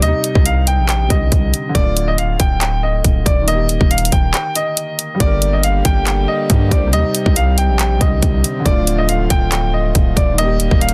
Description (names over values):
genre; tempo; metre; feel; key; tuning
hip hop, trap; 139 BPM; 4/4; half-time; unclear; A4 = 440 Hz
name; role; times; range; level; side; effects
clear concert grand piano; melody; 0.0-10.9 s; D5 to G5; -22 LUFS; equal; low-pass filter, digital delay
felt-muted upright piano; accompaniment; 0.0-10.9 s; C3 to C5; -26 LUFS; equal; low-pass filter
hard-hitting 808-style bass; bass; 0.0-10.9 s; D1 to G2; -19 LUFS; equal; none
trap drum kit; drums; 0.0-10.9 s; handclaps, hi-hat, kick drum; -18 LUFS; equal; none
hand-pumped harmonium; sustained chords; 5.2-10.9 s; C3 to G4; -26 LUFS; equal; none
room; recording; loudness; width
small room ambience; dense, heavily limited modern master; -15 LUFS; mono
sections
0.0-10.9 A section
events
break 4.3-5.2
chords
0.0 Cm; 1.7 Dm; 3.5 Eb; 5.2 Gm; 6.9 Cm; 8.7 Dm; 10.4 Eb